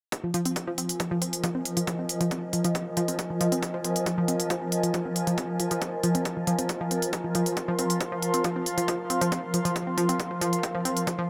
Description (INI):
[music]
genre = driving peak-time techno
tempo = 137 BPM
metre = 4/4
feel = straight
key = F minor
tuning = A4 = 440 Hz
[part]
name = swarming drone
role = drone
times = 0.5-11.3 s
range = F3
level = -35 LUFS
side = equal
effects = built-in reverb, sidechain pumping
[part]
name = electronic hi-hat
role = drums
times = 0.1-11.2 s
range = none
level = -34 LUFS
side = equal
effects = sidechain pumping on hats
[part]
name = electronic kick drum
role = drums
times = 0.1-11.2 s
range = none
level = -36 LUFS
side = equal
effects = high-pass filter on kick, high-pass filter on room
[part]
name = warbly tape-like pad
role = texture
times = 0.5-11.3 s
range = F4 to C6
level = -33 LUFS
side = equal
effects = chorus, built-in reverb, tremolo, sidechain pumping
[part]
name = analog pluck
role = riff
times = 0.2-11.3 s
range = F3 to C4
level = -31 LUFS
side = equal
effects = chorus, sidechain pumping, delay
[sound]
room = moderate huge ambient reverb, RT60 6.6 s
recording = none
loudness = -27 LUFS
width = mono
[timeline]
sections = 0.1-11.3 A section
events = filter sweep on synth arpeggio sound 0.1-11.3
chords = 0.1 Fm